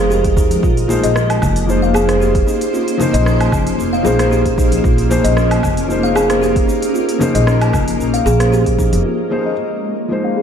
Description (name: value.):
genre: organic downtempo.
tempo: 114 BPM.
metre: 4/4.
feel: swing 54% on 16ths.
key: unclear.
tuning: A4 = 440 Hz.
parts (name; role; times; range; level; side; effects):
granular cloud pad; sustained chords; 0.0-10.4 s; Ab3 to G5; -21 LUFS; equal; built-in reverb, sidechain pumping.
kalimba; arpeggios; 0.0-10.4 s; Eb4 to F5; -18 LUFS; right 1 dB; low-pass filter, digital delay.
upright bass; bass; 0.0-9.0 s; F1 to Eb2; -17 LUFS; equal; sidechain pumping.
organic electronic drum kit; drums; 0.1-10.4 s; hi-hat, rim click, shaker, woodblock; -24 LUFS; right 2 dB; overdrive, low-pass filter on perc, low-pass filter on hats, low-pass filter on snare, low-pass filter on room.
electronic kick drum; drums; 0.2-8.9 s; none; -18 LUFS; equal; overdrive.
congas; percussion; 0.4-9.0 s; none; -25 LUFS; left 2 dB; none.
felt-muted upright piano; accompaniment; 0.9-10.4 s; F3 to C5; -21 LUFS; left 3 dB; sidechain pumping, digital delay.
room: moderate concert hall reverb, RT60 1.8 s, small room ambience.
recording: dark, warm production.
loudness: -12 LUFS.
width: side -8 dB against mid.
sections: 0.0-9.1 A section; 9.1-10.4 B section.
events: filter sweep on kalimba 9.1-10.4.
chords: 0.0 Fm9; 0.6 Bbm11; 9.1 Fm9.